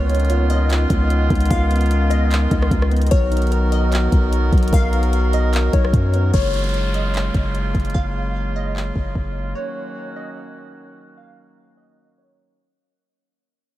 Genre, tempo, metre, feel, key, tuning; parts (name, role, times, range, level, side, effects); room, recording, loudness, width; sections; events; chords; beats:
hip hop, atmospheric cloud-rap; 149 BPM; 4/4; half-time; Eb minor; A4 = 440 Hz
glassy wavetable pluck; melody; 0.0-12.4 s; Db5 to F5; -28 LUFS; left 2 dB; chorus, low-pass filter, diffuse ambient delay
clear woodwind section; sustained chords; 0.0-12.7 s; Db3 to A#4; -25 LUFS; right 1 dB; sidechain pumping, low-pass filter
soft electric-piano-like synth keys; arpeggios; 0.0-6.3 s; Cb4 to A#4; -29 LUFS; left 1 dB; chorus, diffuse ambient delay
long sustained 808-style bass; bass; 0.0-9.5 s; Gb1 to F#2; -18 LUFS; equal
smooth R&B drum kit; drums; 0.1-9.2 s; handclaps, hi-hat, kick drum, rim click; -20 LUFS; equal
downlifter; sound effects; 6.3-9.6 s; -34 LUFS; right 1 dB
light reverb; -16 LUFS; side -14 dB against mid
0.0-6.3 A section; 6.3-12.8 B section
fade-out 6.3-12.8; filter sweep 6.3-12.8
0.0 Db9; 3.1 Bmaj7; 6.3 Gbmaj9; 9.6 Ebm7
0.30 0.70 1.10 | 1.51 1.91 2.31 2.71 | 3.12 3.52 3.92 4.32 | 4.73 5.13 5.53 5.93 | 6.34 6.74 7.14 7.55 | 7.95 8.35 8.75 9.16 | 9.56 9.96 10.37 10.77 | 11.17 11.57 11.97 12.38